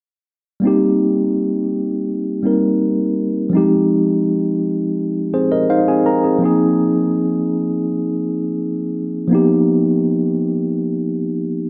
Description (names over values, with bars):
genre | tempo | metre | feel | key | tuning
R&B | 83 BPM | 4/4 | straight | unclear | A4 = 442 Hz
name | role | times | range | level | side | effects
mellow tine electric piano | accompaniment | 0.6-11.7 s | F3 to Bb5 | -17 LUFS | equal | none
room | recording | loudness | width
moderate plate reverb, RT60 2.7 s | none | -17 LUFS | mono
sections
0.6-11.7 A section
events
tine electric piano fill 5.0-6.4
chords
0.6 Cm7; 3.5 Fm7; 6.4 Bb7sus4/F; 9.3 G7alt